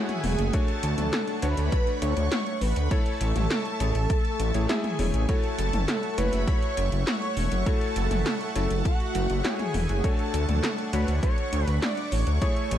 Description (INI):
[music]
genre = synthwave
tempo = 101 BPM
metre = 4/4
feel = straight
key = unclear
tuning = A4 = 440 Hz
[part]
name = wide unison lead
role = melody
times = 0.0-12.8 s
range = F#4 to D5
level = -32 LUFS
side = equal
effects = analog chorus, digital delay
[part]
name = string machine, violins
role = second line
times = 0.0-12.8 s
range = F#5 to D6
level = -37 LUFS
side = equal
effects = ensemble chorus, ping-pong delay
[part]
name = soft supersaw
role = sustained chords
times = 0.0-12.8 s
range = A3 to C#6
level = -35 LUFS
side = right 2 dB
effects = sidechain pumping
[part]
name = bright electric grand piano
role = stabs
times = 0.0-12.8 s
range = A3 to E5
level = -35 LUFS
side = left 4 dB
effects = ping-pong delay
[part]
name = 80s electronic pad drums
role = drums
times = 0.1-12.8 s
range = handclaps, hi-hat, snare drum, toms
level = -30 LUFS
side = equal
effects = gated reverb on snare and toms
[part]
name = wide detuned saw bass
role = bass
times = 0.2-12.8 s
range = E1 to D2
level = -25 LUFS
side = equal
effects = chorus, sidechain pumping
[part]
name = electronic kick drum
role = drums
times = 0.5-12.5 s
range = none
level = -25 LUFS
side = equal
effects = none
[sound]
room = little or no reverb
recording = dark, warm production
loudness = -23 LUFS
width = side -11 dB against mid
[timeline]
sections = 0.0-12.8 A section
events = none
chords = 0.0 F#m7; 0.5 Dmaj7; 2.9 Amaj7; 5.3 F#m7; 10.0 Dmaj7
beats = | 0.54 1.13 1.72 2.32 | 2.91 3.50 4.10 4.69 | 5.29 5.88 6.48 7.07 | 7.66 8.26 8.85 9.45 | 10.04 10.63 11.23 11.82 | 12.42